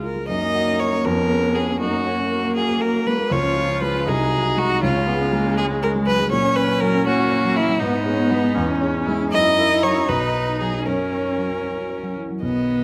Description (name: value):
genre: quick classical-period movement for piano quartet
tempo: 79 BPM (dotted quarters)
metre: 6/8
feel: straight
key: F# major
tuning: A4 = 439 Hz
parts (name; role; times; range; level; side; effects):
- rich violin; melody; 0.0-12.8 s; D#4 to D#5; -24 LUFS; equal; none
- warm grand piano; accompaniment; 0.0-12.8 s; B1 to C#5; -26 LUFS; equal; none
- warm viola; accompaniment; 0.0-12.8 s; E#3 to E4; -27 LUFS; equal; none
- rich cello; second line; 0.3-12.8 s; D#3 to E#4; -29 LUFS; equal; none
room: moderate recital hall reverb, RT60 1.8 s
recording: close, detailed microphones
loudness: -20 LUFS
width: mono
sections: 0.3-12.4 A section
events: none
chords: 0.3 F#; 1.0 C#7/E#; 1.8 F#; 3.3 C#; 4.1 G#7/B#; 4.8 C#; 6.3 F#/A#; 7.8 G#m; 8.6 C#m/E; 9.3 F#7; 10.1 B; 10.9 F#